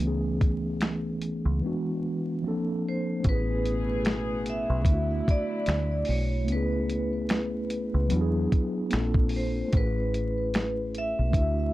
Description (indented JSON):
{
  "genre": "lo-fi hip hop",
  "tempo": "74 BPM",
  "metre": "4/4",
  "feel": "swing 57% on 16ths",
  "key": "A major",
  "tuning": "A4 = 440 Hz",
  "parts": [
    { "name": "mellow tine electric piano", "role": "accompaniment", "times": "0.0-11.7 s", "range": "E3 to E5", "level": "-29 LUFS", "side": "equal", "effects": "medium stereo tremolo, cassette tape, low-pass filter" },
    { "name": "deep dub fingered electric bass", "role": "bass", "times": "0.0-11.7 s", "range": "A1 to E2", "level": "-29 LUFS", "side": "equal", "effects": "none" },
    { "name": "dusty soul sampler-style drum kit", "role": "drums", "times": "0.0-11.6 s", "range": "finger snaps, hi-hat, kick drum, snare drum", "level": "-26 LUFS", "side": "equal", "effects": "none" },
    { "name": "vibraphone with hard mallets", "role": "melody", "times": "2.9-11.7 s", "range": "B4 to E5", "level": "-32 LUFS", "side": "equal", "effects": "low-pass filter, tape echo" },
    { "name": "warm studio string section", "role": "sustained chords", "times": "3.2-6.5 s", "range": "B2 to G#4", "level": "-38 LUFS", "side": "left 1 dB", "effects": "low-pass filter" }
  ],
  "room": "light reverb",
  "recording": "dark, warm production, vinyl crackle",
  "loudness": "-25 LUFS",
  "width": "side -16 dB against mid",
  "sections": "0.0-3.2 A section; 3.2-11.7 B section",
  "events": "drums muted 1.6-3.2",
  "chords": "0.0 Amaj9/C#; 1.6 E7; 2.4 Bbmaj9; 3.2 Amaj9; 4.9 Dadd9; 6.5 Amaj9/C#; 8.1 E7; 8.9 Bbmaj9; 9.7 Amaj9"
}